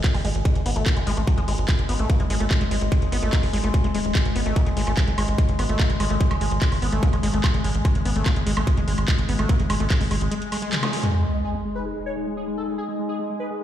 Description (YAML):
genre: psychedelic trance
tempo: 146 BPM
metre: 4/4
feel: straight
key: G# phrygian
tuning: A4 = 439 Hz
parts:
  - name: overtone-sweeping drone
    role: sustained chords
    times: 0.0-13.6 s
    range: G#3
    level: -30 LUFS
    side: left 2 dB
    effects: chorus, built-in reverb, phaser, sidechain pumping
  - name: overdriven acid bass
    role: riff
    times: 0.0-11.1 s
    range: F#3 to B3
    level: -29 LUFS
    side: moving between left 4 dB and right 3 dB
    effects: auto-pan, cassette tape, sidechain pumping, dub echo
  - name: drum and bass drum kit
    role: drums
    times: 0.0-11.1 s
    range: handclaps, hi-hat, snare drum, toms, woodblock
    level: -29 LUFS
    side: right 1 dB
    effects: none
  - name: electronic kick drum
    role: drums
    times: 0.0-10.0 s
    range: none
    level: -20 LUFS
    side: equal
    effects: none
  - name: tight sequencer bass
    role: bass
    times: 0.1-10.3 s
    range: D#1 to A1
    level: -24 LUFS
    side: equal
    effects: none
  - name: zap and sub drop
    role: sound effects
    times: 10.8-12.8 s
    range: none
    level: -28 LUFS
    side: equal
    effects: none
  - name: wide unison lead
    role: melody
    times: 11.1-13.6 s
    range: G#3 to C#5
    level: -30 LUFS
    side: right 1 dB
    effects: phaser, sidechain pumping, dub echo
  - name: ethereal airy pad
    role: texture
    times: 11.6-13.6 s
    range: D#4 to D#6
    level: -30 LUFS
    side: left 4 dB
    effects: ensemble chorus, built-in reverb, sidechain pumping
room: light reverb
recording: played on a big sound system in a bare room, large studio reverb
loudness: -20 LUFS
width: side -11 dB against mid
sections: 0.0-11.1 A section; 11.1-13.6 B section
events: break 10.3-11.1; drum fill 10.7-11.1; band accent 10.7; impact 11.1-12.8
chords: 0.0 G#5